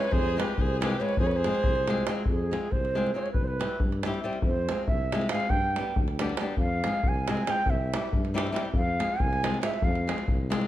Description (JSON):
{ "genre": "balkan folk, Balkan wedding band", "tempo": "278 BPM (eighths)", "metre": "5/8", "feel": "straight", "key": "F hungarian minor", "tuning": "A4 = 438 Hz", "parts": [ { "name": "breathy ney", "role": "melody", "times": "0.0-10.3 s", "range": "Ab4 to Ab5", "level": "-30 LUFS", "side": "right 2 dB", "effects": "none" }, { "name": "dark violin", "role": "second line", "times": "0.0-2.1 s", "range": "G4 to B4", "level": "-35 LUFS", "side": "left 4 dB", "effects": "none" }, { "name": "flamenco guitar", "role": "accompaniment", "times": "0.0-10.7 s", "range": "G3 to Ab4", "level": "-32 LUFS", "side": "left 3 dB", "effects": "none" }, { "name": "davul", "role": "percussion", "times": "0.0-10.7 s", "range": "none", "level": "-29 LUFS", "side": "equal", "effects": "none" }, { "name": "mellow tuba", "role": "bass", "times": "0.1-10.7 s", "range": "C2 to G2", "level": "-31 LUFS", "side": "left 1 dB", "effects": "none" } ], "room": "light reverb", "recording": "none", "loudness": "-25 LUFS", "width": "side -13 dB against mid", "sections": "0.0-2.3 A section; 2.3-10.7 B section", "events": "ney solo 2.3-10.7", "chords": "0.1 Fm; 3.3 C; 4.4 Fm; 5.5 G; 6.6 Fm; 7.7 C; 8.7 Fm", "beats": "| 0.11 0.32 0.54 0.75 0.97 | 1.19 1.40 1.62 1.83 2.05 | 2.26 2.48 2.69 2.91 3.13 | 3.34 3.56 3.77 3.99 4.21 | 4.42 4.64 4.85 5.07 5.29 | 5.50 5.72 5.93 6.15 6.37 | 6.58 6.80 7.01 7.23 7.45 | 7.66 7.88 8.10 8.31 8.53 | 8.74 8.96 9.18 9.39 9.61 | 9.82 10.04 10.26 10.47" }